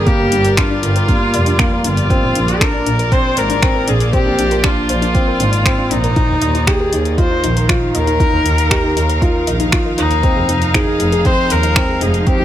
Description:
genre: piano and strings electronica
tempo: 118 BPM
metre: 4/4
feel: straight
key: unclear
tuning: A4 = 440 Hz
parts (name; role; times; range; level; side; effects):
- rich viola; melody; 0.0-12.4 s; Eb4 to C5; -18 LUFS; left 1 dB; none
- warm studio string section; sustained chords; 0.0-12.4 s; Eb3 to F5; -22 LUFS; equal; sidechain pumping
- warm studio double bass section; bass; 0.0-12.4 s; F1 to Eb2; -18 LUFS; equal; sidechain pumping
- soft round pluck; arpeggios; 0.1-12.4 s; D4 to Eb5; -26 LUFS; left 4 dB; chorus, sidechain pumping, ping-pong delay
- felt-muted upright piano; riff; 0.1-12.4 s; Bb3 to G4; -21 LUFS; equal; ping-pong delay
- deep house drum kit; drums; 0.1-12.4 s; finger snaps, hi-hat; -20 LUFS; equal; overdrive
- electronic kick drum; drums; 0.1-12.4 s; none; -16 LUFS; equal; overdrive
room: light reverb, small room ambience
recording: none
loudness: -12 LUFS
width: side -11 dB against mid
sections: 0.0-12.4 A section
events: none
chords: 0.0 Gm; 2.1 Bbadd9; 6.2 Ebsus2; 10.2 Fm7

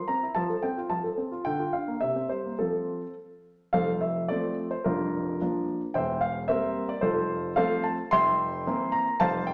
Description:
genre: classical-period piano sonatina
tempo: 110 BPM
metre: 2/4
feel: straight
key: F major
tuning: A4 = 440 Hz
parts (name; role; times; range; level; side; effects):
- warm baby grand piano; solo; 0.0-9.5 s; E1 to C6; -28 LUFS; equal; none
room: wet stone room reverb, RT60 1.2 s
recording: none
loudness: -28 LUFS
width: mono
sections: 0.0-3.7 A section; 3.7-9.5 B section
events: none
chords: 0.4 F; 1.5 Bb/D; 2.0 C7; 2.6 F; 4.9 Bb/F; 6.0 C7/E; 7.0 F; 8.1 C7/F

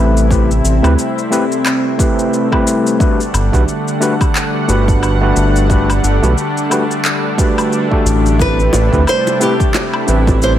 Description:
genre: sunset chillout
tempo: 89 BPM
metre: 4/4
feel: swing 58% on 16ths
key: A dorian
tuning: A4 = 440 Hz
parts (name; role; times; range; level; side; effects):
- overdriven tine electric piano; accompaniment; 0.0-10.6 s; A3 to B4; -17 LUFS; moving between left 4 dB and right 3 dB; auto-pan, vintage 12-bit sampler grit, ping-pong delay
- lush unison pad; sustained chords; 0.0-10.6 s; C3 to F#5; -18 LUFS; equal; chorus
- round analog bass; bass; 0.0-10.6 s; G1 to D2; -13 LUFS; equal; none
- electronic shaker, woodblock and handclaps; drums; 0.2-10.6 s; none; -21 LUFS; left 2 dB; overdrive
- electronic kick drum; drums; 0.3-10.4 s; none; -16 LUFS; equal; overdrive
- nylon-string guitar; melody; 8.4-10.5 s; G4 to C5; -17 LUFS; right 2 dB; digital delay
- bongos; percussion; 8.7-10.4 s; none; -20 LUFS; equal; none
room: light reverb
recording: none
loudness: -11 LUFS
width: side -11 dB against mid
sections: 0.0-10.6 A section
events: none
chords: 0.0 Am9; 3.0 Gmaj9; 8.4 Am9

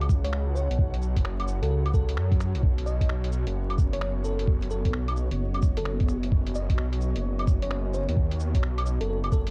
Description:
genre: future garage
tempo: 130 BPM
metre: 4/4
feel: swing 64% on 16ths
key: unclear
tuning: A4 = 444 Hz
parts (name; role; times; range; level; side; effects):
- ethereal airy pad; sustained chords; 0.0-9.5 s; B3 to A5; -39 LUFS; equal; ensemble chorus, built-in reverb, vintage 12-bit sampler grit, sidechain pumping
- swelling detuned saw bass; bass; 0.0-9.5 s; F#1 to F#2; -30 LUFS; equal; sidechain pumping
- lo-fi sampler-style drum kit; drums; 0.0-9.5 s; cabasa, claves, finger snaps, hi-hat; -39 LUFS; equal; overdrive, vintage 12-bit sampler grit
- electronic kick drum; drums; 0.1-9.4 s; none; -26 LUFS; equal; vintage 12-bit sampler grit
- bell-like FM electric piano; melody; 0.2-9.5 s; A4 to D#5; -38 LUFS; equal; chorus, tremolo, tape echo
- flickering grainy texture; texture; 3.6-9.5 s; C#5; -50 LUFS; equal; none
room: digital ambience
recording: dark, warm production, vinyl crackle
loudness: -26 LUFS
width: mono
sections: 0.0-9.5 A section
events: none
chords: 0.0 F#m; 2.6 B7

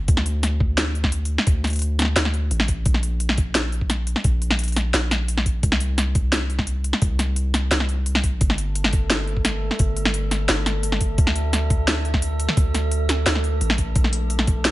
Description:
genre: half-time drum and bass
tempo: 173 BPM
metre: 4/4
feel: half-time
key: unclear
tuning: A4 = 442 Hz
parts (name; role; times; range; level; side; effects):
- long sustained 808-style bass; bass; 0.0-14.7 s; G1 to D2; -23 LUFS; equal; none
- drum and bass drum kit; drums; 0.1-14.7 s; hi-hat, snare drum; -22 LUFS; equal; small room reverb
- electronic kick drum; drums; 0.1-14.5 s; none; -21 LUFS; equal; small room reverb
- metallic inharmonic drone; texture; 8.8-14.7 s; A3 to A4; -30 LUFS; right 1 dB; chorus, built-in reverb
room: digital ambience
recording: nothing above 11.0 kHz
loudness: -19 LUFS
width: side -17 dB against mid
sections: 0.0-14.7 A section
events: none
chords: 0.1 D5; 2.9 N.C.; 8.4 Gsus2; 11.2 D5; 14.0 N.C.

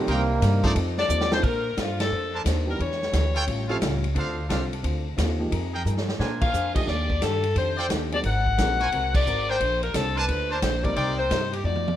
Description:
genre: jazz, big band swing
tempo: 176 BPM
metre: 4/4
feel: swing 65% on 8ths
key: Bb major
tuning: A4 = 440 Hz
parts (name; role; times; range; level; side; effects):
- clear trombone section; second line; 0.0-0.7 s; C3 to Bb3; -27 LUFS; right 3 dB; none
- warm upright piano; accompaniment; 0.0-8.8, 10.8-10.9 s; E3 to Bb4; -32 LUFS; right 2 dB; none
- upright bass; bass; 0.0-12.0 s; Ab1 to Bb2; -26 LUFS; equal; none
- hollow-body jazz guitar; accompaniment; 0.1-11.9 s; A2 to C5; -33 LUFS; left 2 dB; none
- clear trumpet section; stabs; 0.1-11.5 s; D4 to A5; -32 LUFS; right 2 dB; none
- swinging big-band drum kit; drums; 0.1-12.0 s; crash cymbal, hi-hat, kick drum, ride cymbal, snare drum, toms; -29 LUFS; equal; none
- edgy saxophone section; melody; 1.0-3.8, 6.4-12.0 s; F4 to Gb5; -26 LUFS; left 4 dB; none
room: light reverb, studio reverb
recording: rough home demo mix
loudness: -22 LUFS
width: side -11 dB against mid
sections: 0.0-1.4 A section; 1.4-12.0 B section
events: trombone section solo 0.0-1.4; drum fill 1.1-1.4, 5.9-6.5, 11.6-12.0; band accent 1.9, 6.4, 9.1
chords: 0.1 Cm7; 0.8 F7; 1.4 Bbmaj9; 2.8 Em7; 3.5 A7alt; 4.2 Dm7; 5.5 Fm11; 6.2 Bb9; 6.9 Ebmaj9#11; 8.2 Ab9; 9.6 Bbmaj9; 11.0 Cm7

